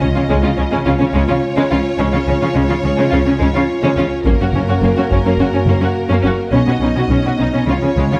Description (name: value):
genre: cinematic, epic orchestral film score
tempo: 106 BPM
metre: 4/4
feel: straight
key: Db major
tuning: A4 = 440 Hz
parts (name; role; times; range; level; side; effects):
- rich symphonic violin section; melody; 0.0-8.2 s; Bb4 to Eb5; -28 LUFS; equal; none
- rich symphonic violin section; second line; 0.0-8.2 s; Ab3 to Gb4; -24 LUFS; equal; none
- rich symphonic viola section; accompaniment; 0.0-8.2 s; Db4; -22 LUFS; equal; none
- dark French horn section; sustained chords; 0.0-8.2 s; Bb3 to Gb4; -25 LUFS; equal; none
- clear symphonic double bass section; bass; 0.0-8.0 s; Gb1 to Db2; -22 LUFS; equal; none
- rich symphonic cello section; bass; 0.0-8.2 s; Gb2 to Db3; -21 LUFS; equal; none
- taiko ensemble; drums; 4.3-5.4 s; none; -22 LUFS; equal; none
room: moderate scoring stage reverb, RT60 1.6 s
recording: none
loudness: -15 LUFS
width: mono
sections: 0.0-8.2 A section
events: none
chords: 0.0 Db; 4.3 Gb; 6.5 Cbadd9; 7.7 Db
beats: 0.30 0.86 1.43 | 2.00 2.56 3.13 3.69 | 4.26 4.82 5.39 5.96 | 6.53 7.10 7.68